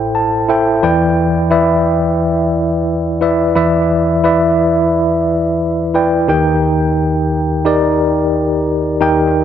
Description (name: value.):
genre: pop.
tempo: 88 BPM.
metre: 4/4.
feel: straight.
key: unclear.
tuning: A4 = 443 Hz.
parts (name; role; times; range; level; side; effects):
tine electric piano; solo; 0.0-9.4 s; A1 to A5; -12 LUFS; equal; medium stereo tremolo, tape echo.
room: moderate lush hall reverb, RT60 2.8 s.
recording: none.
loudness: -12 LUFS.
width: side -9 dB against mid.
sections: 0.0-6.3 A section; 6.3-9.4 B section.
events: tine electric piano fill 0.0-0.8.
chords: 0.0 Am7; 0.8 Em7; 6.3 Eb.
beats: 0.15 | 0.83 1.52 2.20 2.88 | 3.56 4.24 4.92 5.61 | 6.29 6.97 7.65 8.33 | 9.02.